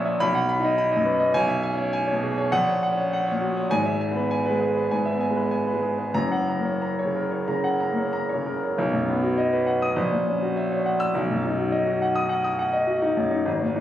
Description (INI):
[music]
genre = classical, virtuoso piano study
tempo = 90-105 BPM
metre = 4/4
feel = rubato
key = B major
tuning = A4 = 443 Hz
[part]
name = clear concert grand piano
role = solo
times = 0.0-13.8 s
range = F#1 to E6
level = -21 LUFS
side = equal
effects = none
[sound]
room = moderate recital hall reverb, RT60 1.7 s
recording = recorded on a phone in the room, club reverb, compression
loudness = -21 LUFS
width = side -12 dB against mid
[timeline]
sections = 0.0-8.8 A section; 8.8-13.8 B section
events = none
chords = 0.2 B; 1.3 C#m7/B; 2.5 F#/A#; 3.7 E/G#; 6.2 F#; 8.8 B; 10.0 F#7/A#; 11.1 B